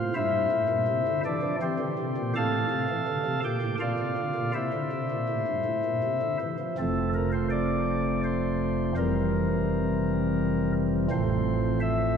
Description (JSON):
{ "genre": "classical, chorale-style piece for pipe organ", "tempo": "82 BPM", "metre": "3/4", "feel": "straight", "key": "F major", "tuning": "A4 = 440 Hz", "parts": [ { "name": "pipe organ, flutes", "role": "solo", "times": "0.0-12.2 s", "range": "F1 to A5", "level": "-25 LUFS", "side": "equal", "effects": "none" } ], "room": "wet church reverb, RT60 3.6 s", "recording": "heard from further back in the room", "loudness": "-25 LUFS", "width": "side -7 dB against mid", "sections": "0.0-6.8 A section; 6.8-12.2 B section", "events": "none", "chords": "0.2 C7/G; 2.3 F/A; 3.8 Bbadd9; 4.5 C; 6.8 F; 9.0 C7/F; 11.1 F/A" }